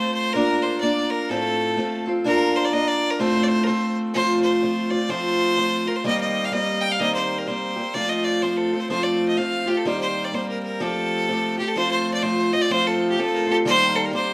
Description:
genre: celtic folk, Celtic polka.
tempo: 126 BPM.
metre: 2/4.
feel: swing 61% on 8ths.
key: F mixolydian.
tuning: A4 = 440 Hz.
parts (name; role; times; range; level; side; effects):
bright fiddle; melody; 0.0-14.3 s; G4 to G5; -26 LUFS; equal; none.
picked steel-string acoustic guitar; accompaniment; 0.0-14.3 s; A2 to Bb4; -25 LUFS; equal; none.
room: wet large studio reverb, RT60 0.9 s.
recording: band playing live in one room.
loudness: -22 LUFS.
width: mono.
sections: 0.0-4.2 A section; 4.2-11.8 B section; 11.8-14.3 B section.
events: none.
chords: 0.4 Bb; 1.3 F/A; 2.3 Bb; 3.2 F/A; 4.2 F; 6.1 Eb6; 8.0 F; 9.9 Eb6; 10.8 Fadd9; 11.8 F; 13.7 Eb6.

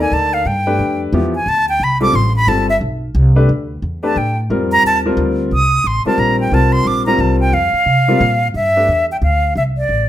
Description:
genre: modal jazz.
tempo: 178 BPM.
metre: 3/4.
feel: swing 62% on 8ths.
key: unclear.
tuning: A4 = 440 Hz.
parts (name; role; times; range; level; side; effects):
breathy bright concert flute; melody; 0.0-10.1 s; D5 to Eb6; -15 LUFS; right 1 dB; none.
warm grand piano; accompaniment; 0.0-8.9 s; F3 to D5; -18 LUFS; left 2 dB; none.
upright bass; bass; 0.0-10.1 s; G1 to C3; -17 LUFS; equal; none.
room: moderate club reverb, RT60 0.8 s.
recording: none.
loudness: -12 LUFS.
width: side -12 dB against mid.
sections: 0.0-8.5 A section; 8.5-10.1 B section.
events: flute solo 0.0-8.5.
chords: 0.5 G13sus4; 4.5 Fsus4; 8.5 Gsus4.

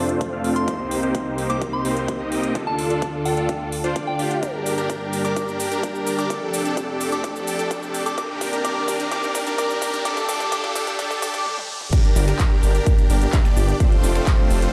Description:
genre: EDM, festival progressive house.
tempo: 128 BPM.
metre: 4/4.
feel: straight.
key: G minor.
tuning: A4 = 440 Hz.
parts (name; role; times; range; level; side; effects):
lush unison pad; sustained chords; 0.0-14.7 s; C2 to D5; -32 LUFS; equal; chorus, sidechain pumping.
supersaw chords; riff; 0.0-14.7 s; A3 to F5; -26 LUFS; equal; sidechain pumping, low-pass filter, tape echo.
big-room dance drum kit; drums; 0.1-14.7 s; crash cymbal, finger snaps, handclaps, hi-hat, shaker, toms; -34 LUFS; equal; none.
electronic kick drum; drums; 0.2-14.4 s; none; -23 LUFS; equal; high-pass filter on kick.
soft synth bell; melody; 0.6-11.3 s; G5 to D6; -32 LUFS; equal; chorus, tape echo.
riser; sound effects; 6.4-11.9 s; none; -37 LUFS; equal; none.
detuned saw bass; bass; 12.2-14.7 s; F1 to G1; -21 LUFS; equal; chorus, sidechain pumping.
room: moderate lush hall reverb, RT60 1.9 s, digital ambience.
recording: played on a big sound system in a bare room, stone room reverb, high-pass filter.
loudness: -22 LUFS.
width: mono.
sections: 0.0-11.9 A section; 11.9-14.7 B section.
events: build-up 0.0-11.9; filter sweep on supersaw synth 0.0-11.9; filter sweep on analog synth pad 0.0-11.9; filter sweep 0.0-11.9; drum fill 4.4-11.5, 11.5-11.9; riser 6.4-11.9; drop 11.9-14.7.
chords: 0.0 F6; 0.7 Cm7; 2.6 Dm; 4.4 Gm; 6.3 F6; 8.2 Cm7; 10.1 Dm; 11.9 Gm; 13.8 F6.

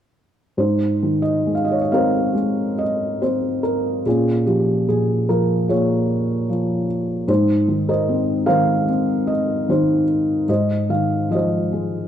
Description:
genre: classical, lyrical solo piano.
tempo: 68-76 BPM.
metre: 4/4.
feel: rubato.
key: Ab major.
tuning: A4 = 440 Hz.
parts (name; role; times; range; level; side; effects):
felt-muted upright piano; solo; 0.6-12.1 s; Ab2 to F5; -17 LUFS; equal; none.
room: moderate scoring stage reverb, RT60 1.6 s.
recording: dark, warm production.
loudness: -17 LUFS.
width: side -10 dB against mid.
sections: 0.6-12.1 A section.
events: none.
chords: 0.6 Abadd9; 4.1 Bbm7; 7.3 Abadd9; 10.5 Fm7/Ab.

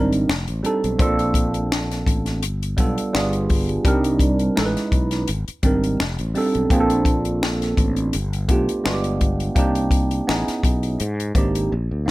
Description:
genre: R&B, neo-soul.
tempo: 84 BPM.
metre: 4/4.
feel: swing 54% on 16ths.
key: Bb major.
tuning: A4 = 440 Hz.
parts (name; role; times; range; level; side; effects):
tine electric piano; accompaniment; 0.0-12.1 s; G3 to B4; -21 LUFS; right 2 dB; phaser.
sustaining fretless electric bass; bass; 0.0-12.1 s; F1 to Ab2; -24 LUFS; equal; none.
compact cocktail drum kit; drums; 0.1-12.1 s; finger snaps, hi-hat, kick drum, snare drum; -22 LUFS; left 1 dB; none.
room: light reverb.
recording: none.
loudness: -18 LUFS.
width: side -18 dB against mid.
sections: 0.0-12.1 A section.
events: drum fill 11.7-12.1.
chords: 0.3 F13; 1.0 Bbmaj9; 2.4 G7; 3.1 G7b9; 3.8 Cm7; 4.6 Amaj9#11; 5.3 Abmaj9#11; 6.0 F13; 6.7 Bbmaj9; 8.1 G7; 8.8 G7b9; 9.6 Cm7; 10.3 Amaj9#11; 11.0 Abmaj9#11.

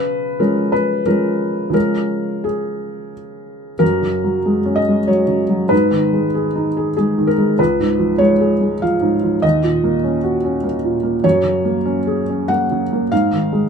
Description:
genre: neoclassical minimalist piano.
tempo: 85-101 BPM.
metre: 3/4.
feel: rubato.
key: F# major.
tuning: A4 = 441 Hz.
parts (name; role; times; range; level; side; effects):
felt-muted upright piano; solo; 0.0-13.7 s; C#2 to F#5; -15 LUFS; equal; none.
room: moderate small room reverb, RT60 0.5 s.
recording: minimal, uncompressed stereo recording.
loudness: -15 LUFS.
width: side -6 dB against mid.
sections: 0.0-3.8 A section; 3.8-13.7 B section.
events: none.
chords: 0.0 C#; 3.8 F#add9; 5.7 G#m; 7.6 C#; 9.4 D#m7; 11.2 F#add9; 13.1 G#5.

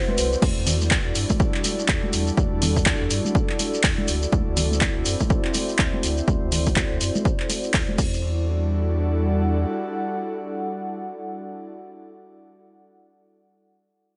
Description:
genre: deep house.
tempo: 123 BPM.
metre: 4/4.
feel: swing 60% on 16ths.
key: E minor.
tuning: A4 = 440 Hz.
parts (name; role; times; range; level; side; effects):
airy breathy pad; sustained chords; 0.0-11.7 s; G3 to D5; -33 LUFS; equal; chorus, sidechain pumping.
warbly tape-like pad; texture; 0.1-12.2 s; G3 to F#5; -33 LUFS; equal; chorus, built-in reverb, sidechain pumping.
congas; percussion; 0.1-8.0 s; none; -33 LUFS; equal; none.
warm sub bass; bass; 0.2-9.7 s; C2 to G2; -27 LUFS; equal; sidechain pumping.
punchy analog drum machine; drums; 0.2-8.1 s; crash cymbal, handclaps, hi-hat; -28 LUFS; equal; none.
shekere; percussion; 0.2-8.2 s; none; -34 LUFS; equal; none.
electronic kick drum; drums; 0.4-8.1 s; none; -26 LUFS; equal; none.
room: light reverb.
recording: nothing above 10.9 kHz.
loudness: -23 LUFS.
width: mono.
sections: 0.4-8.2 A section; 8.2-12.1 B section.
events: filter sweep on analog synth pad 0.4-8.2.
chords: 0.4 Em11; 4.1 D9; 8.0 Em11.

